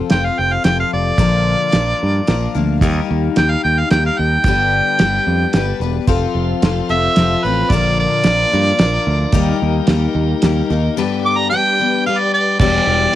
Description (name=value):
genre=folk rock and heartland rock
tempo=110 BPM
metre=3/4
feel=straight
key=unclear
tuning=A4 = 440 Hz
part: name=picked twelve-string acoustic guitar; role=accompaniment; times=0.0-13.2 s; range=G2 to B4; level=-20 LUFS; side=left 9 dB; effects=cassette tape
part: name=mellow harmonica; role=melody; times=0.1-13.2 s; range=B4 to D6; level=-16 LUFS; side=right 1 dB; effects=cassette tape
part: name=modern bright fingered electric bass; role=bass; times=0.1-13.1 s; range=E1 to G2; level=-18 LUFS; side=right 1 dB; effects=none
part: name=cloth-damped thuddy drum kit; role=drums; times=0.1-12.7 s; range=crash cymbal, hi-hat, kick drum, snare drum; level=-16 LUFS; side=right 1 dB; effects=cassette tape
part: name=tonewheel organ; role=sustained chords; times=6.1-13.2 s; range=E3 to D5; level=-25 LUFS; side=right 1 dB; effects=slow rotary speaker, overdrive, cassette tape
room=light reverb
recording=home recording on cassette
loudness=-13 LUFS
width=side -13 dB against mid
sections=0.0-12.6 A section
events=harmonica solo 0.0-12.6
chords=0.0 F; 1.2 Bb; 2.8 Eb; 4.4 G; 6.1 F; 7.7 Bb; 9.3 Eb; 11.0 G; 12.6 Em7